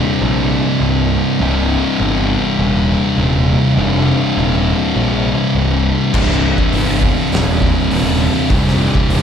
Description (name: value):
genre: stoner and doom metal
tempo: 101 BPM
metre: 4/4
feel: straight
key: C minor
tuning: A4 = 444 Hz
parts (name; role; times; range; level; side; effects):
- thick fuzz guitar; riff; 0.0-9.2 s; C2 to C3; -15 LUFS; left 1 dB; distortion
- fuzz picked electric bass; bass; 0.2-9.2 s; C1 to Bb1; -17 LUFS; equal; overdrive
- oversized low-tuned drum kit; drums; 6.1-9.2 s; crash cymbal, hi-hat, kick drum, snare drum; -17 LUFS; equal; none
room: light reverb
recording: live gig heard through the venue's PA, recital hall reverb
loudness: -12 LUFS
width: side -8 dB against mid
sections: 0.0-9.2 A section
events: none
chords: 0.0 Cm